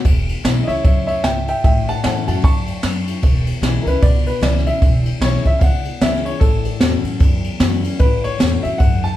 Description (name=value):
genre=rockabilly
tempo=151 BPM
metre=4/4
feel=swing 60% on 8ths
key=E major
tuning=A4 = 439 Hz
part: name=picked steel-string acoustic guitar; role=accompaniment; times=0.0-9.2 s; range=E2 to F#4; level=-24 LUFS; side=left 5 dB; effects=none
part: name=upright bass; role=bass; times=0.0-9.1 s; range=E1 to F#2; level=-21 LUFS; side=equal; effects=none
part: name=jazz brush drum kit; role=drums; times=0.1-9.1 s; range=kick drum, ride cymbal, snare drum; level=-16 LUFS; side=equal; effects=none
part: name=warm upright piano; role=melody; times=0.6-9.2 s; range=A4 to C#6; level=-22 LUFS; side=equal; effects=none
room=light reverb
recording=band playing live in one room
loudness=-14 LUFS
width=side -13 dB against mid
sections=0.1-9.2 A section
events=upright piano solo 0.1-9.2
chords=0.1 E6; 1.6 A6; 3.2 E6; 6.4 A6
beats=| 0.05 0.45 0.85 1.24 | 1.64 2.04 2.44 2.83 | 3.23 3.63 4.03 4.43 | 4.83 5.22 5.62 6.02 | 6.42 6.81 7.21 7.61 | 8.01 8.40 8.80